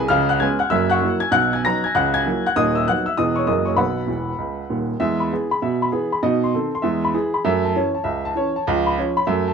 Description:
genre	jazz, stride piano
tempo	196 BPM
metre	4/4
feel	swing 64% on 8ths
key	B major, E major from 5.0 s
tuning	A4 = 441 Hz
part	warm upright piano	solo	0.0-9.5 s	D#1 to A#6	-18 LUFS	equal	none
room	moderate studio reverb, RT60 0.7 s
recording	dark, warm production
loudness	-18 LUFS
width	side -6 dB against mid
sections	0.0-5.0 A section; 5.0-9.5 B section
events	upright piano fill 4.1-5.0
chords	0.1 C#7; 0.7 F#7; 1.3 B; 1.9 F#7/C#; 2.6 B/D#; 3.2 E; 3.5 F#13; 3.8 B; 5.0 E; 6.2 B7b9; 6.8 E; 7.4 F#m7; 8.7 C#7

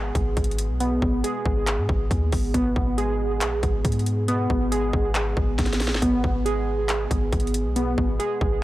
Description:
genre	hip hop, trap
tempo	138 BPM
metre	4/4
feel	half-time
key	G# minor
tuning	A4 = 440 Hz
part	warbly lo-fi synth keys	arpeggios	0.0-8.6 s	B3 to G#4	-25 LUFS	right 1 dB	chorus, digital delay
part	clean 808-style bass	bass	0.0-8.6 s	G#1 to G#2	-25 LUFS	equal	none
part	trap drum kit	drums	0.2-8.5 s	handclaps, hi-hat, kick drum, rim click, snare drum	-26 LUFS	equal	none
room	little or no reverb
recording	blown-out, overdriven recording, overdrive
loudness	-21 LUFS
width	side -16 dB against mid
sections	0.0-8.6 A section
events	drum fill 5.6-6.0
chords	0.0 G#m

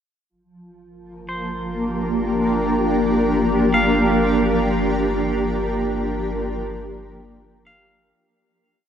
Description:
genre	ambient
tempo	61 BPM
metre	4/4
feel	straight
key	G minor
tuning	A4 = 439 Hz
part	granular cloud pad	sustained chords	1.3-8.2 s	F3 to Bb4	-19 LUFS	equal	built-in reverb
part	warm sub bass	bass	0.3-8.1 s	G1	-30 LUFS	equal	none
part	twangy electric guitar	arpeggios	1.3-8.6 s	C5 to F5	-27 LUFS	equal	tape echo
room	wet huge ambient reverb, RT60 8.2 s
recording	none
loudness	-18 LUFS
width	side -8 dB against mid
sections	0.3-8.2 A section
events	fade-in on clean electric guitar 0.3-8.2; fade-in on sub bass 0.3-8.2; fade-out 4.2-8.2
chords	0.3 Gm7

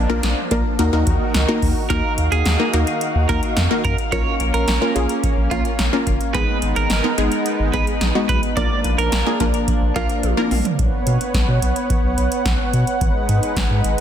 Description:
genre	synth-pop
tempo	108 BPM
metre	4/4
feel	straight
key	Eb minor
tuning	A4 = 440 Hz
part	lush unison pad	sustained chords	0.0-14.0 s	Eb3 to F#5	-24 LUFS	right 1 dB	chorus
part	round analog bass	bass	0.0-14.0 s	Gb1 to B2	-20 LUFS	equal	none
part	wide unison pluck	accompaniment	0.1-10.6 s	Ab3 to Bb4	-23 LUFS	left 1 dB	none
part	electro analog drum machine	drums	0.2-14.0 s	hi-hat, kick drum, snare drum, toms	-22 LUFS	equal	none
part	twelve-string electric guitar	second line	1.9-10.1 s	F4 to D5	-24 LUFS	right 4 dB	ping-pong delay
room	light reverb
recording	dense, heavily limited modern master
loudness	-16 LUFS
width	side -9 dB against mid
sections	0.0-1.9 A section; 1.9-10.8 B section; 10.8-14.0 C section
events	drum fill 10.2-10.8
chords	0.0 Bb; 0.8 Ebm; 1.9 Ebmadd9; 4.1 Bbm; 6.3 Abm; 8.6 Bb; 10.8 Bsus2; 13.0 Abm7

